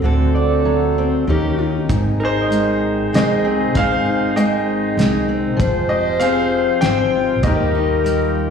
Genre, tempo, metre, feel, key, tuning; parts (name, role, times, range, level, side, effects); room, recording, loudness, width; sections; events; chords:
acoustic folk-pop ballad; 97 BPM; 3/4; straight; Ab major; A4 = 438 Hz
warm clarinet; second line; 0.0-8.5 s; Eb4 to C5; -24 LUFS; right 3 dB; plate reverb, slapback echo
fingerpicked steel-string acoustic guitar; accompaniment; 0.0-8.5 s; Ab2 to A4; -19 LUFS; left 4 dB; plate reverb, slapback echo
pedal harmonium; sustained chords; 0.0-8.5 s; C3 to G4; -28 LUFS; left 1 dB; plate reverb
upright bass; bass; 0.0-8.5 s; F1 to Eb2; -22 LUFS; right 1 dB
electric guitar through a small old amp; arpeggios; 0.3-5.2 s; Ab4 to G5; -25 LUFS; right 4 dB; tremolo, plate reverb, slapback echo
cloth-damped thuddy drum kit; drums; 1.9-8.2 s; hi-hat, kick drum, snare drum; -20 LUFS; equal
bright grand piano; melody; 2.2-8.3 s; Eb4 to G5; -20 LUFS; right 1 dB; plate reverb, slapback echo
moderate club reverb, RT60 0.7 s; live gig heard through the venue's PA, recital hall reverb, studio reverb; -15 LUFS; side -6 dB against mid
0.0-1.9 A section; 1.9-8.5 B section
0.0 D7; 1.3 Eb7; 1.9 Ab; 5.6 Fmadd9; 7.4 Eb